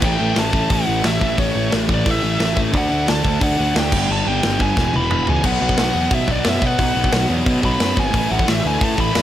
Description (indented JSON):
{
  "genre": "punk rock",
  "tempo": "178 BPM",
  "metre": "4/4",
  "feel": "straight",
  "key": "unclear",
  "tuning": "A4 = 443 Hz",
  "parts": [
    { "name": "bluesy overdriven lead guitar", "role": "melody", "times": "0.0-9.2 s", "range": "C#5 to B5", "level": "-23 LUFS", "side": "equal", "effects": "distortion, tape echo" },
    { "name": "biting overdriven guitar", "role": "riff", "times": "0.0-9.2 s", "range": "E2 to D4", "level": "-20 LUFS", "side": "equal", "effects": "none" },
    { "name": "fuzz picked electric bass", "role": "bass", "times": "0.0-9.2 s", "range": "E1 to B2", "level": "-22 LUFS", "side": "equal", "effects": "overdrive" },
    { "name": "big rock drum kit", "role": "drums", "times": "0.0-9.2 s", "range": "crash cymbal, hi-hat, kick drum, snare drum, toms", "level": "-21 LUFS", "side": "equal", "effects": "none" }
  ],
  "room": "little or no reverb",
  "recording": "none",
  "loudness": "-15 LUFS",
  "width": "side -12 dB against mid",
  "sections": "0.0-5.4 A section; 5.4-9.2 B section",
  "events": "drum fill 4.8-5.4",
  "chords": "0.0 A5; 2.7 D; 3.9 G5; 4.8 E; 5.4 B5; 8.1 A5"
}